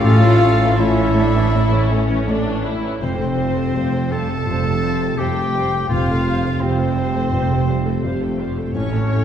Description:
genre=cinematic, emotional film score for orchestra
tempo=83 BPM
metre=4/4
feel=uneven beats, rubato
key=F major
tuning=A4 = 440 Hz
part: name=muted studio violin section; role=melody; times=0.0-9.2 s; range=E5 to C#6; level=-30 LUFS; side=left 4 dB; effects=none
part: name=clear clarinet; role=second line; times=0.0-9.2 s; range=C4 to A4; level=-24 LUFS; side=equal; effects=none
part: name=clear oboe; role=second line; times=0.0-2.3 s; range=A4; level=-26 LUFS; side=equal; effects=none
part: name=muted chamber violin section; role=second line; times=0.0-9.2 s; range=A3 to A5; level=-26 LUFS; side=left 4 dB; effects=none
part: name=felt-muted upright piano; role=accompaniment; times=0.0-9.2 s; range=F1 to C#5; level=-22 LUFS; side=left 2 dB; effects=none
part: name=muted studio viola section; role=accompaniment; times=0.0-9.2 s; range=E3 to C#5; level=-26 LUFS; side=right 1 dB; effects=none
part: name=dark French horn section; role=sustained chords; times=0.0-9.2 s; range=A3 to A4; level=-25 LUFS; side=equal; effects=none
part: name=muted studio cello section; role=bass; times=0.0-9.2 s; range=F2 to A2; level=-25 LUFS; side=right 3 dB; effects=none
part: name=muted studio double bass section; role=bass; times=0.0-9.2 s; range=F1 to A1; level=-22 LUFS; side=right 2 dB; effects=none
room=wet scoring stage reverb, RT60 1.5 s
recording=heard from further back in the room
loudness=-16 LUFS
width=side -9 dB against mid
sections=0.0-3.0 A section; 3.0-9.2 A section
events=none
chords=0.0 A; 3.0 Fadd9; 8.7 A

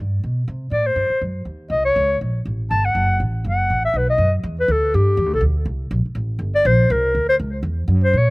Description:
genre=jazz, small-group swing and bop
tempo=242 BPM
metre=4/4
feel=swing 57% on 8ths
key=unclear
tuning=A4 = 442 Hz
part: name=upright bass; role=bass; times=0.0-8.3 s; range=F#1 to C3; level=-20 LUFS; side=equal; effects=none
part: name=breathy clarinet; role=melody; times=0.7-8.3 s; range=G4 to A5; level=-18 LUFS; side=left 1 dB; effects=slapback echo
room=little or no reverb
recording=recorded outdoors, with no room sound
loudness=-17 LUFS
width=side -24 dB against mid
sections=0.0-4.4 A section; 4.4-8.3 B section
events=none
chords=0.0 G; 0.5 C5; 1.5 Eb5; 2.5 F#m; 3.9 B; 4.4 Em7; 5.4 D5; 6.4 Gmadd11; 7.4 C#m

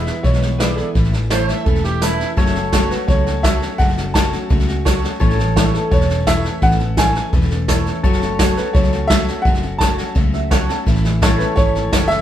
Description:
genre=honky-tonk and classic country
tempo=170 BPM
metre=4/4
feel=straight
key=unclear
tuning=A4 = 441 Hz
part: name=clear upright piano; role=melody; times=0.0-12.2 s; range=A4 to A5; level=-21 LUFS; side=equal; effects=none
part: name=honky-tonk upright piano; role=accompaniment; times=0.0-12.2 s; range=E4 to A5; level=-25 LUFS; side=right 3 dB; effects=none
part: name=picked steel-string acoustic guitar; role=accompaniment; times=0.0-12.2 s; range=E2 to A4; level=-23 LUFS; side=left 2 dB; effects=none
part: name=vintage muted fingered electric bass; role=bass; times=0.0-12.2 s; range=E1 to C#2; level=-21 LUFS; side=equal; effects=none
part: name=vintage brush drum kit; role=drums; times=0.1-12.1 s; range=hi-hat, kick drum, snare drum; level=-18 LUFS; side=equal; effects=none
part: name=overdriven harmonica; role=second line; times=1.3-2.3 s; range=E4 to E5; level=-23 LUFS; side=right 5 dB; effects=none
part: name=pedal steel guitar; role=sustained chords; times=2.4-12.2 s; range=A4 to C#5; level=-26 LUFS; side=left 3 dB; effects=none
room=moderate studio reverb, RT60 0.8 s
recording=band playing live in one room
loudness=-14 LUFS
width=side -11 dB against mid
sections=0.0-2.4 A section; 2.4-12.2 B section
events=honky-tonk piano fill 10.2-10.9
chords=0.0 E; 1.0 A; 2.4 F#m; 5.2 A; 8.0 F#m; 10.9 A

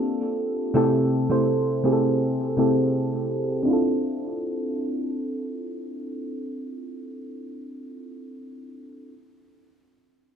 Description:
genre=R&B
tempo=82 BPM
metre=4/4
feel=straight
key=D minor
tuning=A4 = 439 Hz
part: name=mellow FM electric piano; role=solo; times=0.0-9.1 s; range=C3 to C5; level=-23 LUFS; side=equal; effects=chorus, low-pass filter, digital delay
room=moderate echo chamber reverb, RT60 1.4 s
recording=none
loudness=-22 LUFS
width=side -7 dB against mid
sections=0.0-3.7 A section; 3.7-6.6 B section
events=filter sweep on FM electric piano 0.0-3.7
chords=0.0 Bbmaj9; 0.7 Am7/C; 3.7 Dm9

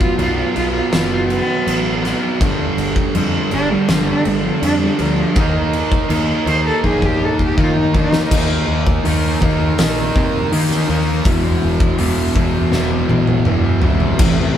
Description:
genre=quiet-loud alternative rock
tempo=81 BPM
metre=4/4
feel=straight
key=unclear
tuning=A4 = 440 Hz
part: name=rich cello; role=melody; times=0.0-8.3, 13.8-14.6 s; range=C3 to C5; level=-21 LUFS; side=equal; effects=none
part: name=overdriven semi-hollow guitar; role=riff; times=0.0-14.6 s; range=E2 to Eb4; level=-22 LUFS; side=left 7 dB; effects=none
part: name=thick fuzz guitar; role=riff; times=0.0-14.2 s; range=E2 to Eb4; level=-20 LUFS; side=right 6 dB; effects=distortion
part: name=oversized low-tuned drum kit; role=drums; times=0.0-14.4 s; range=crash cymbal, hi-hat, kick drum, snare drum, toms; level=-19 LUFS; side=equal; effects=none
part: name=fuzz picked electric bass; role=bass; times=0.2-14.6 s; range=E1 to Eb3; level=-21 LUFS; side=left 1 dB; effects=overdrive
room=light reverb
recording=band playing live in one room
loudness=-14 LUFS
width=side -10 dB against mid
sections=0.0-8.3 A section; 8.3-14.2 B section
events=cello solo 0.0-8.3; drum fill 6.8-8.3, 12.7-14.2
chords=0.0 B5; 2.4 G5; 5.4 Eb5; 11.3 E5

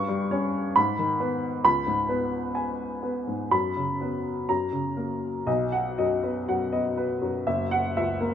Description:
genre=classical, romantic character piece for solo piano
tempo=62 BPM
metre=2/4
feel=uneven beats, rubato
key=B major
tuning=A4 = 440 Hz
part: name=warm upright piano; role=solo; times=0.0-8.3 s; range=F#1 to C#6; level=-24 LUFS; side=equal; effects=none
room=moderate large studio reverb, RT60 1.5 s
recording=minimal, uncompressed stereo recording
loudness=-24 LUFS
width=side -9 dB against mid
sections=0.0-5.5 A section; 5.5-8.3 B section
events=none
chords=0.0 N.C.; 0.7 G#m; 1.6 C#5; 3.5 F#sus4; 4.5 F#; 5.5 B; 7.5 F#7

